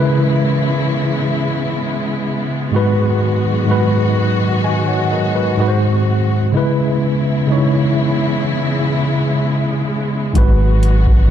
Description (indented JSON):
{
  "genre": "contemporary R&B",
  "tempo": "63 BPM",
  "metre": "4/4",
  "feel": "straight",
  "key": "unclear",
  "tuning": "A4 = 441 Hz",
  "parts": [
    { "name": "tine electric piano", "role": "accompaniment", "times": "0.0-11.3 s", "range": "G#2 to G#5", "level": "-16 LUFS", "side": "equal", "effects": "overdrive, fast stereo tremolo" },
    { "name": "warm studio string section", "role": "sustained chords", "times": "0.0-11.3 s", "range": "C#3 to F#4", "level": "-20 LUFS", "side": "left 1 dB", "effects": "none" },
    { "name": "round analog bass", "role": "bass", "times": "10.4-11.3 s", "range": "G#1", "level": "-14 LUFS", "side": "equal", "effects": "none" },
    { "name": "booming analog drum machine", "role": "drums", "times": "10.4-11.3 s", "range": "hi-hat, kick drum", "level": "-12 LUFS", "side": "equal", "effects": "none" }
  ],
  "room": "light reverb, digital ambience",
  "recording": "dark, warm production",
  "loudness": "-14 LUFS",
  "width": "side -10 dB against mid",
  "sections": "0.0-11.3 A section",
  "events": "none",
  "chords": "0.0 C#m7; 2.7 G#m7; 5.6 G#7; 6.5 C#m7; 10.4 G#m7"
}